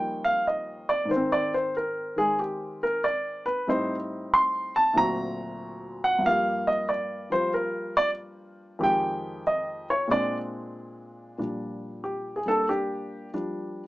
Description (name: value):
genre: solo jazz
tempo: 93 BPM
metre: 4/4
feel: swing 67% on 8ths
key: unclear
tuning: A4 = 440 Hz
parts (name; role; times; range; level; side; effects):
- dark baby grand piano; solo; 0.0-13.9 s; D2 to C6; -25 LUFS; equal; none
room: light reverb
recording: small speaker sound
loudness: -24 LUFS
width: side -17 dB against mid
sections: 0.0-11.4 A section; 11.4-13.9 B section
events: grand piano solo 0.0-11.4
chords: 0.0 Eb13; 1.1 Ab; 3.7 Am7b5; 5.0 Daug7; 6.2 Gm7; 8.8 Fm9; 10.1 Bb9; 11.4 Bb6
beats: 0.46 | 1.10 1.74 2.38 3.03 | 3.67 4.31 4.96 5.60 | 6.24 6.88 7.53 8.17 | 8.81 9.46 10.10 10.74 | 11.38 12.03 12.67 13.32